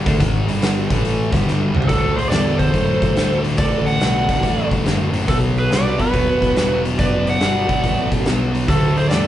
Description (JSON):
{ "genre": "blues rock power trio and southern rock", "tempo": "142 BPM", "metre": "4/4", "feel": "swing 66% on 8ths", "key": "D mixolydian", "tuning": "A4 = 442 Hz", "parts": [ { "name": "thick fuzz guitar", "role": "riff", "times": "0.0-9.3 s", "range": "D2 to D4", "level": "-20 LUFS", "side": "left 1 dB", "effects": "distortion" }, { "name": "fuzz picked electric bass", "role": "bass", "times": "0.0-9.3 s", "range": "D1 to F#2", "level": "-23 LUFS", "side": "equal", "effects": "overdrive" }, { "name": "oversized low-tuned drum kit", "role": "drums", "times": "0.1-9.2 s", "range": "hi-hat, kick drum, snare drum, toms", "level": "-20 LUFS", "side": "equal", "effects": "none" }, { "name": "overdriven slide guitar", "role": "melody", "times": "1.9-9.3 s", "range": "A4 to F#5", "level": "-21 LUFS", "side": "equal", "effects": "slapback echo" }, { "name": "dark smooth lead guitar", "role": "second line", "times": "1.9-9.3 s", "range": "F#4 to D5", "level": "-28 LUFS", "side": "right 7 dB", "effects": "overdrive" } ], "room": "moderate large studio reverb, RT60 1.1 s", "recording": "band playing live in one room, nothing above 10.6 kHz", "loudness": "-15 LUFS", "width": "side -12 dB against mid", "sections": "0.0-1.9 A section; 1.9-9.3 B section", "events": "drum fill 1.5-1.9", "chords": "0.4 G5; 0.8 A5; 1.3 G5; 1.7 C5; 1.9 D; 5.3 Bm; 8.7 D", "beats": "| 0.21 0.63 1.05 1.47 | 1.90 2.32 2.74 3.17 | 3.59 4.01 4.44 4.86 | 5.29 5.71 6.13 6.56 | 6.98 7.41 7.83 8.26 | 8.68 9.10" }